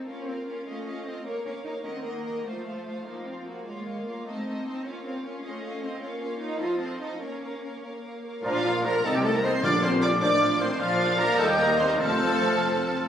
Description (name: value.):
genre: quick classical-period movement for symphony orchestra.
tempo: 96-105 BPM (dotted quarters).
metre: 6/8.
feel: rubato.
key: Bb minor, Bb major from 8.4 s.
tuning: A4 = 442 Hz.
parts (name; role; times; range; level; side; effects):
rich studio violin section; melody; 0.0-13.0 s; F5 to D6; -35 LUFS; equal; none.
rich studio violin section; second line; 0.0-13.0 s; Eb4 to Eb5; -34 LUFS; left 1 dB; none.
rich studio viola section; accompaniment; 0.1-13.0 s; D3 to F4; -33 LUFS; equal; none.
rich studio cello section; bass; 0.1-13.0 s; Eb2 to F4; -34 LUFS; right 1 dB; none.
bright small flute group; second line; 8.4-13.0 s; Bb5 to A6; -32 LUFS; left 1 dB; none.
warm oboe; second line; 8.4-13.0 s; F4 to D5; -30 LUFS; right 1 dB; none.
warm bassoon; accompaniment; 8.4-13.0 s; Eb3 to F3; -33 LUFS; right 1 dB; none.
mellow French horn section; sustained chords; 8.4-13.0 s; F3 to D4; -29 LUFS; left 2 dB; none.
warm trumpet section; stabs; 8.4-13.0 s; F4 to D5; -34 LUFS; right 2 dB; none.
clear studio double bass section; bass; 8.4-13.0 s; F1 to Eb2; -33 LUFS; right 2 dB; none.
warm clarinet; second line; 8.5-13.0 s; C5 to Eb5; -31 LUFS; equal; none.
timpani; percussion; 9.6-10.2 s; Bb2; -32 LUFS; left 1 dB; none.
room: wet recital hall reverb, RT60 1.6 s.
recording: recorded on a phone in the room, studio reverb, compression.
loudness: -24 LUFS.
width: side -9 dB against mid.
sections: 0.0-8.4 A section; 8.4-13.1 A section.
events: none.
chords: 0.1 Bbm; 0.7 F7/A; 1.3 Bbm; 1.8 Ebm; 2.4 F; 3.7 Bbm; 4.3 Adim; 4.9 Bbm; 5.4 F7/A; 6.0 Bbm; 6.6 F7; 7.2 Bbm; 8.4 Bb; 9.0 Adim/C; 9.6 Bb; 10.2 F7/A; 10.8 Bb; 11.4 Eb; 12.0 F.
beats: | 0.09 0.67 | 1.26 1.84 | 2.45 3.06 | 3.66 4.26 | 4.85 5.44 | 6.01 6.59 | 7.20 7.82 | 8.44 9.05 | 9.64 10.21 | 10.79 11.38 | 11.98 12.60.